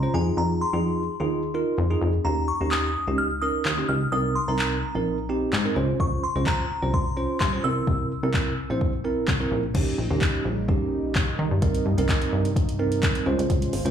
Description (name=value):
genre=dance-pop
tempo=128 BPM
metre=4/4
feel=straight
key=unclear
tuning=A4 = 439 Hz
part: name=glassy synth bell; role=melody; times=0.0-9.2 s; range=Ab5 to F6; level=-29 LUFS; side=left 1 dB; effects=chorus, tremolo, tape echo, slapback echo
part: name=bell-like tine electric piano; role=accompaniment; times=0.0-13.9 s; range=C4 to C5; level=-27 LUFS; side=right 3 dB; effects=sidechain pumping, slapback echo
part: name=plucky analog bass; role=bass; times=0.0-13.9 s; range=Ab1 to Eb3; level=-26 LUFS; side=left 1 dB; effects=sidechain pumping
part: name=smooth R&B drum kit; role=drums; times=2.7-13.9 s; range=crash cymbal, handclaps, hi-hat, kick drum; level=-26 LUFS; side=left 1 dB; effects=none
part: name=warm analog pad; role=sustained chords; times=9.7-13.9 s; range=C3 to C5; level=-32 LUFS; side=equal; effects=chorus, sidechain pumping
room=light reverb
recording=live gig heard through the venue's PA, club reverb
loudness=-22 LUFS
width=side -8 dB against mid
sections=0.0-9.7 A section; 9.7-13.9 B section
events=none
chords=0.1 Fm7; 2.2 Eb7; 4.1 Cm7; 5.8 Dbmaj7; 7.6 C7; 9.7 Eb7; 11.6 Cm7; 13.3 Dbmaj7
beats=| 0.37 0.84 1.31 1.78 | 2.25 2.72 3.19 3.65 | 4.12 4.59 5.06 5.53 | 6.00 6.47 6.94 7.41 | 7.87 8.34 8.81 9.28 | 9.75 10.22 10.69 11.15 | 11.62 12.09 12.56 13.03 | 13.50